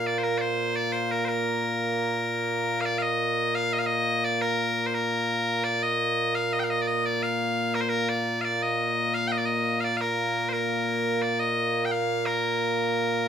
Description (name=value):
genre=scottish traditional, Scottish pipe music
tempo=86 BPM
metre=2/4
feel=straight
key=Bb major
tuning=A4 = 440 Hz
part: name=loud bright bagpipes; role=solo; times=0.0-13.3 s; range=Bb2 to G5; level=-24 LUFS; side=equal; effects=none
room=moderate studio reverb, RT60 0.5 s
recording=band playing live in one room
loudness=-24 LUFS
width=side -8 dB against mid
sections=0.0-2.8 A section; 2.8-13.3 B section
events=none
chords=none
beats=| 0.06 0.76 | 1.45 2.15 | 2.85 3.54 | 4.24 4.94 | 5.64 6.34 | 7.03 7.73 | 8.43 9.13 | 9.82 10.52 | 11.22 11.92 | 12.62